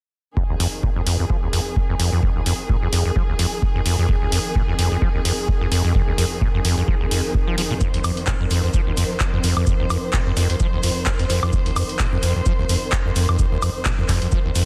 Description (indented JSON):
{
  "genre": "acid house",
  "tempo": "129 BPM",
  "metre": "4/4",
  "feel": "swing 56% on 16ths",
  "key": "F minor",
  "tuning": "A4 = 439 Hz",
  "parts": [
    { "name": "rich symphonic string section", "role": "sustained chords", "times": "0.4-14.7 s", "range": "F2 to C5", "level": "-29 LUFS", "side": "equal", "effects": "sidechain pumping" },
    { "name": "acid bass, saw", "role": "riff", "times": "0.4-14.6 s", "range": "Eb2 to F3", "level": "-24 LUFS", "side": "equal", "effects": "overdrive" },
    { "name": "electronic kick drum", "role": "drums", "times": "0.4-14.4 s", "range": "none", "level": "-24 LUFS", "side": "equal", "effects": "none" },
    { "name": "booming analog drum machine", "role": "drums", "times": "0.6-14.7 s", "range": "handclaps, hi-hat, woodblock", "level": "-28 LUFS", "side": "equal", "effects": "none" },
    { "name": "dusty soul sampler-style drum kit", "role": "drums", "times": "7.8-14.7 s", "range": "hi-hat, shaker, snare drum", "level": "-35 LUFS", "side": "equal", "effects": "high-pass filter on perc, high-pass filter on hats, high-pass filter on snare" }
  ],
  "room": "digital ambience",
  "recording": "dense, heavily limited modern master",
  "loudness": "-20 LUFS",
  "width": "mono",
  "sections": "0.4-14.7 A section",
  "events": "none",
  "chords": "0.4 Fm7"
}